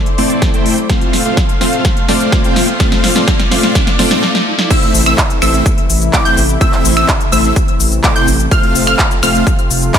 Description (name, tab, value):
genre	EDM, festival progressive house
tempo	126 BPM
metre	4/4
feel	straight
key	A minor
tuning	A4 = 439 Hz
part	lush unison pad	sustained chords	0.0-10.0 s	C3 to F5	-20 LUFS	left 1 dB	chorus, sidechain pumping
part	riser	sound effects	0.1-4.7 s	none	-24 LUFS	right 1 dB	none
part	big-room dance drum kit	drums	0.1-10.0 s	crash cymbal, finger snaps, handclaps, hi-hat, shaker, snare drum	-16 LUFS	equal	overdrive, studio ambience
part	dense compressed supersaw	riff	0.2-10.0 s	A3 to G5	-16 LUFS	equal	sidechain pumping, low-pass filter, ping-pong delay
part	electronic kick drum	drums	0.4-10.0 s	none	-14 LUFS	equal	overdrive, studio ambience
part	wide unison pluck	arpeggios	4.7-10.0 s	D6 to G6	-17 LUFS	right 1 dB	sidechain pumping, ping-pong delay
part	saturated sub bass	bass	4.9-9.9 s	F1 to A1	-16 LUFS	equal	sidechain pumping
room	light reverb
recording	none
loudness	-10 LUFS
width	side -8 dB against mid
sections	0.0-4.7 A section; 4.7-10.0 B section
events	build-up 0.0-4.7; drum fill 0.0-4.2, 4.2-4.7; riser 0.1-4.7; drop 4.7-10.0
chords	0.0 Am; 0.9 F; 4.7 Am; 8.5 F